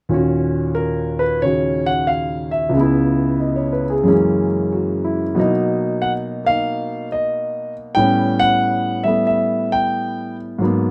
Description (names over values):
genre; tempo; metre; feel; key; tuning
solo jazz; 92 BPM; 4/4; swing 68% on 8ths, rubato; Eb minor; A4 = 438 Hz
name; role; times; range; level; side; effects
warm concert grand piano; solo; 0.1-10.9 s; Db2 to G5; -19 LUFS; equal; none
room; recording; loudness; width
light reverb; none; -19 LUFS; mono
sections
0.1-10.9 A section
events
none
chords
0.1 Ebm7; 2.7 Dbm7; 4.1 Gb9; 5.4 Bmaj7; 8.0 A9